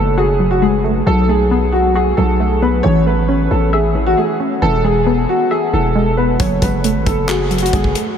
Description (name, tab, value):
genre	hip hop, trap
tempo	135 BPM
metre	4/4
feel	half-time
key	F# minor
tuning	A4 = 439 Hz
part	dark baby grand piano	melody	0.0-7.9 s	F#4 to C#5	-17 LUFS	equal	analog chorus, low-pass filter, ping-pong delay
part	warbly dusty pluck	accompaniment	0.0-8.2 s	E3 to E5	-18 LUFS	left 1 dB	chorus, low-pass filter
part	growling 808-style bass	bass	0.0-7.9 s	E1 to B1	-17 LUFS	equal	none
part	tight funk drum kit	drums	6.4-8.1 s	handclaps, hi-hat, kick drum	-20 LUFS	equal	none
room	wet huge ambient reverb, RT60 9.3 s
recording	dreamy mix soaked in reverb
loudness	-12 LUFS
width	side -8 dB against mid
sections	0.0-8.2 A section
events	none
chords	0.0 F#madd9; 1.1 B5; 2.8 A; 4.6 E; 6.4 F#madd9